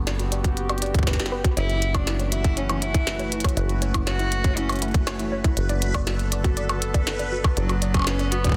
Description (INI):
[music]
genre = IDM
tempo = 120 BPM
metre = 4/4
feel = straight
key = F# phrygian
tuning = A4 = 438 Hz
[part]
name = warbly tape-like pad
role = sustained chords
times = 0.0-8.6 s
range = D3 to B4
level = -35 LUFS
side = equal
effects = chorus, built-in reverb
[part]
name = deep acid bass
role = bass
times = 0.0-8.6 s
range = F#1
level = -29 LUFS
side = equal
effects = none
[part]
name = warbly dusty pluck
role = arpeggios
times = 0.1-8.5 s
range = E4 to D5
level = -35 LUFS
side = equal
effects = chorus, digital delay
[part]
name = glitchy drum kit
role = drums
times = 0.1-8.5 s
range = hi-hat, percussion blips, snare drum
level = -31 LUFS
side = equal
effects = dub echo
[part]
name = electronic kick drum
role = drums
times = 0.4-8.6 s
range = none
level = -24 LUFS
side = equal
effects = none
[part]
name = rich cello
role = melody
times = 1.6-8.6 s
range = F#3 to F#4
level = -32 LUFS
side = equal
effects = dub echo
[part]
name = backwards swelling texture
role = texture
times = 2.3-8.6 s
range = B4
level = -39 LUFS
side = equal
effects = built-in reverb, sidechain pumping
[sound]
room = light reverb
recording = dense, heavily limited modern master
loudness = -24 LUFS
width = mono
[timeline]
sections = 0.0-8.6 A section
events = none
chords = 0.0 Gmaj7/F#; 1.6 F#m7; 5.6 Bm7/F#; 7.6 Gmaj7#11/F# (rootless)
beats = 0.07 0.57 1.07 | 1.57 2.07 2.57 3.07 | 3.57 4.07 4.57 5.07 | 5.57 6.07 6.57 7.07 | 7.57 8.07